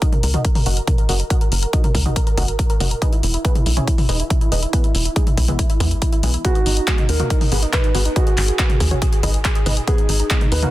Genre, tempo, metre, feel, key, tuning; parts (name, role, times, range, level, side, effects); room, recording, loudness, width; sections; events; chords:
uplifting trance; 140 BPM; 4/4; straight; G# minor; A4 = 439 Hz
supersaw stab; melody; 0.0-10.7 s; E3 to F#5; -25 LUFS; right 1 dB; sidechain pumping, low-pass filter, digital delay
big-room dance drum kit; drums; 0.0-10.7 s; handclaps, hi-hat, toms; -23 LUFS; left 1 dB; sidechain pumping on hats, sidechain pumping on toms
electronic kick drum; drums; 0.0-10.4 s; -18 LUFS; equal
tight sequencer bass; bass; 0.2-10.7 s; E1 to E2; -19 LUFS; equal; sidechain pumping
dark grand piano; second line; 6.4-10.7 s; F#4 to B4; -25 LUFS; right 2 dB; digital delay
little or no reverb; dense, heavily limited modern master; -16 LUFS; side -16 dB against mid
0.0-10.7 A section
0.0 D#m/F#; 3.0 E; 6.4 G#m7